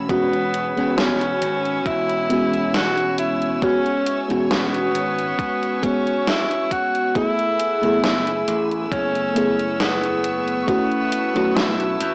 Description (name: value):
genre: vaporwave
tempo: 68 BPM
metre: 4/4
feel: swing 53% on 16ths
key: E major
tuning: A4 = 442 Hz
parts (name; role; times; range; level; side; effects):
- FM electric piano with soft pad layer; accompaniment; 0.0-12.1 s; G#3 to G#4; -21 LUFS; equal; analog chorus
- clear symphonic string section; sustained chords; 0.0-12.1 s; A3 to E6; -32 LUFS; equal; none
- slap bass; bass; 0.0-12.1 s; E1 to E2; -31 LUFS; equal; tube saturation
- clear tenor saxophone; melody; 0.1-12.1 s; B3 to F#4; -22 LUFS; equal; cassette tape, tape echo
- electronic kick drum; drums; 0.1-10.9 s; none; -28 LUFS; equal; overdrive, cassette tape
- gated 80s digital drum machine; drums; 0.1-12.1 s; hi-hat, snare drum; -24 LUFS; equal; gated reverb, gated reverb snare, overdrive, cassette tape
room: light reverb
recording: home recording on cassette, small speaker sound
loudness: -18 LUFS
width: side -34 dB against mid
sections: 0.0-12.1 A section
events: none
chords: 0.1 E6; 7.2 F#m11; 10.7 B9sus4